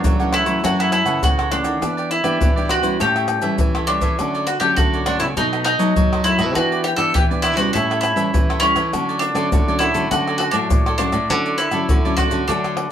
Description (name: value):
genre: samba and choro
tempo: 101 BPM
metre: 4/4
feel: straight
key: D major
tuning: A4 = 441 Hz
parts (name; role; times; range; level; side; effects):
- bowl-back mandolin; melody; 0.0-12.9 s; C#4 to A4; -20 LUFS; equal; none
- cavaquinho; accompaniment; 0.0-12.8 s; D#4 to F#5; -27 LUFS; right 6 dB; none
- nylon-string guitar; accompaniment; 0.0-12.9 s; F#2 to G4; -25 LUFS; left 2 dB; none
- nylon-string guitar; bass; 0.0-12.9 s; A2 to F#3; -24 LUFS; equal; none
- maracas, surdo, pandeiro, agogo bells and tamborim; percussion; 0.0-12.9 s; none; -21 LUFS; equal; none
room: moderate studio reverb, RT60 0.5 s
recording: band playing live in one room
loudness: -16 LUFS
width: side -9 dB against mid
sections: 0.0-12.9 A section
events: drum fill 3.7-4.2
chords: 0.0 F#m7; 1.8 Em7; 3.0 A7; 4.2 Dmaj7; 5.4 B7; 6.6 Em7; 7.7 A7; 8.9 Dmaj7